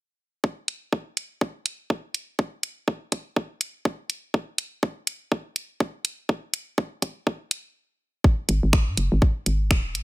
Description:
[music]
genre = minimal techno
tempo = 123 BPM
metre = 4/4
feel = swing 60% on 16ths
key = unclear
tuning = A4 = 439 Hz
[part]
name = electronic kick drum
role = drums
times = 0.4-9.8 s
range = none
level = -20 LUFS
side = equal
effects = high-pass filter on kick, studio ambience
[part]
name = garage drum kit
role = drums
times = 0.7-10.0 s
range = finger snaps, hi-hat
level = -26 LUFS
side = equal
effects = studio ambience
[part]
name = hollow knocking FM bass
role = bass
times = 8.5-10.0 s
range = D#1 to G#2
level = -22 LUFS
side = equal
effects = sidechain pumping
[sound]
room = digital ambience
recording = none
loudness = -24 LUFS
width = side -19 dB against mid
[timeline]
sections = 0.4-8.2 A section; 8.2-10.0 B section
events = stop 7.8-8.2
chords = none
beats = | 0.44 0.93 1.41 1.90 | 2.39 2.88 3.36 3.85 | 4.34 4.83 5.32 5.80 | 6.29 6.78 7.27 7.75 | 8.24 8.73 9.22 9.71

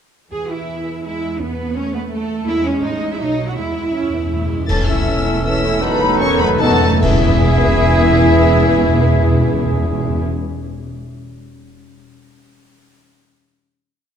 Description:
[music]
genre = classical, dramatic, fast romantic movement for symphony orchestra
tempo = 140-169 BPM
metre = 3/4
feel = straight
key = E major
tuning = A4 = 440 Hz
[part]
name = warm symphonic violin section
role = melody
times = 0.3-10.2 s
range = G#4 to A6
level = -23 LUFS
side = left 5 dB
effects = none
[part]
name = rich symphonic violin section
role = second line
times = 0.3-10.2 s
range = C#4 to G#5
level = -27 LUFS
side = left 2 dB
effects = none
[part]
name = warm symphonic viola section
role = accompaniment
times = 0.3-10.2 s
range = D#3 to E4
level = -23 LUFS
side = right 1 dB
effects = none
[part]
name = rich symphonic cello section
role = bass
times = 0.3-10.2 s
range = E2 to G#4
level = -23 LUFS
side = right 2 dB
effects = none
[part]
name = warm symphonic double bass section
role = bass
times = 0.3-10.2 s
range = E1 to E2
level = -23 LUFS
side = right 3 dB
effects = none
[part]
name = timpani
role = percussion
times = 0.3-10.2 s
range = E2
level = -20 LUFS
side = left 1 dB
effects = none
[part]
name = cymbal swell, clash cymbals and concert bass drum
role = percussion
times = 2.5-7.8 s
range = none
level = -23 LUFS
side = left 1 dB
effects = none
[part]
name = bright clarinet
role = second line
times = 4.7-10.2 s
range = C#4 to E4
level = -26 LUFS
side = left 2 dB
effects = none
[part]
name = concert flute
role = second line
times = 4.7-10.2 s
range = A4 to A5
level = -24 LUFS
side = equal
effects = none
[part]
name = mellow cor anglais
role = second line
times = 4.7-10.2 s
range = G#4 to A4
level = -28 LUFS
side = right 1 dB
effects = none
[part]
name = clear trombone section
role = sustained chords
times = 4.7-10.2 s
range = E3 to E4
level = -24 LUFS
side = right 4 dB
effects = none
[part]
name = mellow French horn section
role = sustained chords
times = 4.7-10.2 s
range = A3 to A4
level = -22 LUFS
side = left 1 dB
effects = none
[part]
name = dark trumpet section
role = stabs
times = 4.7-10.2 s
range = G#4 to A4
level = -24 LUFS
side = right 1 dB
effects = none
[sound]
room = moderate scoring stage reverb, RT60 2.0 s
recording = dark, warm production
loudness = -14 LUFS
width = side -8 dB against mid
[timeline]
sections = 0.3-4.7 A section; 4.7-7.0 coda; 7.0-9.5 final chord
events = timpani fill 3.6-4.7, 5.8-7.0; slowing down 4.1-7.0; band accent 4.7-5.1, 7.0-7.4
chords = 0.3 E; 1.4 Aadd9/E; 2.5 E; 2.8 A; 3.2 B7; 3.6 E; 4.7 A/E; 5.8 B7/E; 7.0 E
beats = | 0.32 0.69 1.05 | 1.40 1.76 2.12 | 2.48 2.84 3.20 | 3.57 3.94 4.32 | 4.69 5.07 5.44 | 5.82 6.21 6.61 | 7.03 7.44 7.85 | 8.27 8.69 9.10

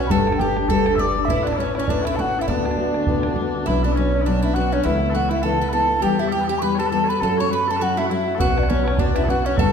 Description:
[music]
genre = celtic folk, Celtic reel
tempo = 202 BPM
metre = 4/4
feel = swing 58% on 8ths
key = unclear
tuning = A4 = 442 Hz
[part]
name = mellow hollow wooden flute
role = melody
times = 0.0-9.7 s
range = C#5 to E6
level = -24 LUFS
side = right 1 dB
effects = none
[part]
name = Irish bouzouki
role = second line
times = 0.0-9.7 s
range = C#4 to D5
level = -27 LUFS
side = right 6 dB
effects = none
[part]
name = mellow small bagpipes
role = second line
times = 0.0-9.7 s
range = C#4 to E5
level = -29 LUFS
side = left 3 dB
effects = none
[part]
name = fingerpicked steel-string acoustic guitar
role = accompaniment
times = 0.0-9.7 s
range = D2 to B4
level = -22 LUFS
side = left 4 dB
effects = none
[part]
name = upright bass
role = bass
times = 0.0-9.7 s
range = G1 to F#2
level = -26 LUFS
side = right 1 dB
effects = none
[part]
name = bodhran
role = percussion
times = 0.1-3.4, 8.4-9.7 s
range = none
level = -25 LUFS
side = right 2 dB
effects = none
[sound]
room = wet scoring stage reverb, RT60 2.0 s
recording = recorded in a church or concert hall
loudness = -18 LUFS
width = side -7 dB against mid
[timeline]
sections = 0.0-3.7 A section; 3.7-9.7 A section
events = none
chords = 0.1 Gadd9; 1.3 Aadd9; 2.5 D6; 3.7 Bmadd9; 4.9 Aadd9/C#; 6.0 Em; 7.2 F#m; 8.4 Bsus2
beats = | 0.10 0.40 0.70 0.99 | 1.29 1.59 1.89 2.18 | 2.48 2.78 3.08 3.37 | 3.67 3.96 4.26 4.56 | 4.86 5.15 5.45 5.74 | 6.04 6.33 6.63 6.93 | 7.22 7.52 7.81 8.11 | 8.40 8.70 9.00 9.29 | 9.59

